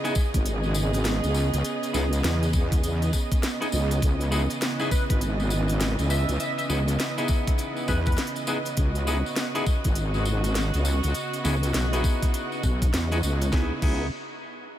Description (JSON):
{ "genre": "glitch hop", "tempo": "101 BPM", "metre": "4/4", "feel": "swing 62% on 16ths", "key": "C# minor", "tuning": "A4 = 439 Hz", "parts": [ { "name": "warm chamber string section", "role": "sustained chords", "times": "0.0-13.8 s", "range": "C#3 to D#5", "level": "-30 LUFS", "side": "right 2 dB", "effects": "sidechain pumping" }, { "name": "clean electric guitar", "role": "stabs", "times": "0.0-14.1 s", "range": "B3 to G#4", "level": "-33 LUFS", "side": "left 2 dB", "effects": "sidechain pumping, diffuse ambient delay" }, { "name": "drum and bass drum kit", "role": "drums", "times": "0.0-14.0 s", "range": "crash cymbal, hi-hat, rim click, snare drum", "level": "-34 LUFS", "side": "equal", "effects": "none" }, { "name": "tambourine", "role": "percussion", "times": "0.0-13.5 s", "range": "none", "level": "-37 LUFS", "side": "left 2 dB", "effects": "none" }, { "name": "electronic kick drum", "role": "drums", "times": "0.2-14.0 s", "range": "none", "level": "-24 LUFS", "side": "equal", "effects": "none" }, { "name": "wobble bass", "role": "bass", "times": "0.3-14.1 s", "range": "G#1 to E2", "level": "-25 LUFS", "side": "equal", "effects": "chorus" }, { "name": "sync lead", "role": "melody", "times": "4.9-8.1 s", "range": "B4 to E5", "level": "-37 LUFS", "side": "equal", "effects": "wide subtle chorus, diffuse ambient delay" } ], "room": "light reverb", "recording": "none", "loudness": "-22 LUFS", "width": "side -12 dB against mid", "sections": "0.0-13.5 A section; 13.5-14.8 B section", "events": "drop 0.0-13.5", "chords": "0.0 C#m9", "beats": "0.46 1.05 | 1.65 2.24 2.83 3.43 | 4.02 4.62 5.21 5.80 | 6.40 6.99 7.58 8.18 | 8.77 9.37 9.96 10.55 | 11.15 11.74 12.34 12.93 | 13.53" }